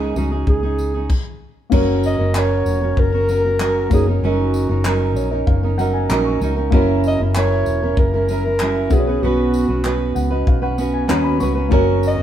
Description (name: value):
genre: acoustic pop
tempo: 96 BPM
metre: 4/4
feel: straight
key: F# major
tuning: A4 = 441 Hz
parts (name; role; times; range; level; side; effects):
- breathy clarinet; melody; 0.0-12.2 s; F#4 to D#5; -22 LUFS; left 1 dB; none
- felt-muted upright piano; accompaniment; 0.0-12.2 s; A#3 to C#6; -25 LUFS; left 6 dB; none
- fingerpicked steel-string acoustic guitar; accompaniment; 0.0-12.2 s; C#3 to B4; -20 LUFS; right 5 dB; none
- vintage muted fingered electric bass; bass; 0.0-12.2 s; E1 to D#2; -21 LUFS; left 1 dB; none
- natural country drum kit; drums; 0.2-12.2 s; crash cymbal, handclaps, kick drum, tambourine; -20 LUFS; left 1 dB; none
room: light reverb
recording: band playing live in one room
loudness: -15 LUFS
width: side -10 dB against mid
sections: 0.0-1.7 A section; 1.7-12.2 B section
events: stop 1.1-1.7; felt piano fill 4.8-6.7, 9.8-11.7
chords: 0.0 C#sus2; 1.7 F#; 3.9 D#m7/F#; 6.7 F#7; 8.9 Bsus2; 11.7 F#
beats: 0.47 1.10 | 1.72 2.35 2.97 3.60 | 4.22 4.85 5.47 6.10 | 6.72 7.35 7.97 8.60 | 9.22 9.85 10.47 11.10 | 11.72